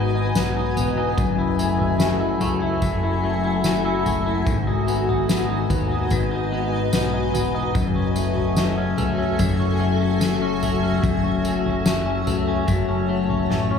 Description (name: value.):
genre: dream pop.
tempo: 73 BPM.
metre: 4/4.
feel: straight.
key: F# dorian.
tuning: A4 = 440 Hz.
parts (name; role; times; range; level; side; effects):
granular cloud pad; sustained chords; 0.0-13.8 s; F#4 to A5; -26 LUFS; left 1 dB; built-in reverb.
clean electric guitar; arpeggios; 0.0-13.8 s; F#2 to E4; -22 LUFS; left 4 dB; wide subtle chorus, tape echo.
fat analog bass; bass; 0.0-13.8 s; E1 to D#2; -28 LUFS; equal; none.
soft-mallet drum kit; drums; 0.4-13.7 s; kick drum, snare drum, tambourine, toms; -25 LUFS; equal; none.
room: light reverb.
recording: studio reverb.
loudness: -19 LUFS.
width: side -7 dB against mid.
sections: 0.0-13.8 A section.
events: drum fill 13.5.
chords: 0.0 G#m7; 1.2 F#m9; 4.5 G#m7; 7.8 F#m9; 11.0 F#m7.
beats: 0.35 | 1.18 2.00 2.82 3.64 | 4.46 5.29 6.11 6.93 | 7.75 8.57 9.39 10.22 | 11.04 11.86 12.68 13.51.